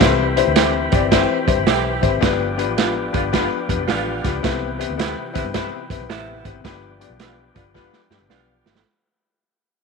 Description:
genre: uptempo 1960s-style soul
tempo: 109 BPM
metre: 4/4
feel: swing 65% on 8ths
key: unclear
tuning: A4 = 440 Hz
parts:
  - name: clear concert grand piano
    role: accompaniment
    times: 0.0-8.8 s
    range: B3 to D5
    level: -21 LUFS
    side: left 14 dB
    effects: none
  - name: tonewheel organ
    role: sustained chords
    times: 0.0-8.8 s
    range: C3 to B4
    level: -27 LUFS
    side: equal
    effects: slow rotary speaker
  - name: vintage muted fingered electric bass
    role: bass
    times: 0.0-8.8 s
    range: F1 to G2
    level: -27 LUFS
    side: equal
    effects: none
  - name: vintage drum kit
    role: drums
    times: 0.0-8.8 s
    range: hi-hat, kick drum, snare drum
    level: -20 LUFS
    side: right 6 dB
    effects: none
  - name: bright saxophone section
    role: second line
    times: 0.6-8.7 s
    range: C3 to G4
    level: -28 LUFS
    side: right 11 dB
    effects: none
room: moderate spring reverb, RT60 2.9 s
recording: 1960s-style stereo with parts hard left and right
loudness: -17 LUFS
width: side -4 dB against mid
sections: 0.0-8.9 A section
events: fade-out 0.0-8.9; drum fill 7.8-8.9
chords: 0.0 Cmaj7; 2.2 G7; 4.4 Cmaj7; 6.6 G7

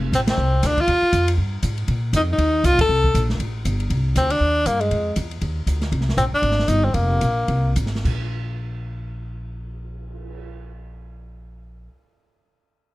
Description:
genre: jazz, small-group swing and bop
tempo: 203-240 BPM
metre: 4/4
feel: swing 60% on 8ths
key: unclear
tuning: A4 = 440 Hz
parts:
  - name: upright bass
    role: bass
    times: 0.0-11.9 s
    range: F1 to Bb2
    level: -22 LUFS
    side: equal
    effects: none
  - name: clear tenor saxophone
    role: melody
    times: 0.1-7.8 s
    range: Ab3 to A4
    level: -20 LUFS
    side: left 1 dB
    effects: none
  - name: open jazz drum kit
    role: drums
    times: 0.1-10.3 s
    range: crash cymbal, cymbal swell, hi-hat, kick drum, ride cymbal, snare drum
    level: -29 LUFS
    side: equal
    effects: none
room: light reverb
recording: none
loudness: -18 LUFS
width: side -18 dB against mid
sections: 0.0-3.9 A section; 3.9-8.1 B section; 8.1-10.4 C section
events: band accent 0.3, 2.8; slowing down 5.9-8.1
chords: 0.0 F; 0.9 Ebadd9; 1.9 Bb5; 2.4 Eb7; 2.9 Gmadd9; 3.9 Cm; 4.9 Ddim; 5.9 C5; 6.9 Fsus4; 8.1 N.C.

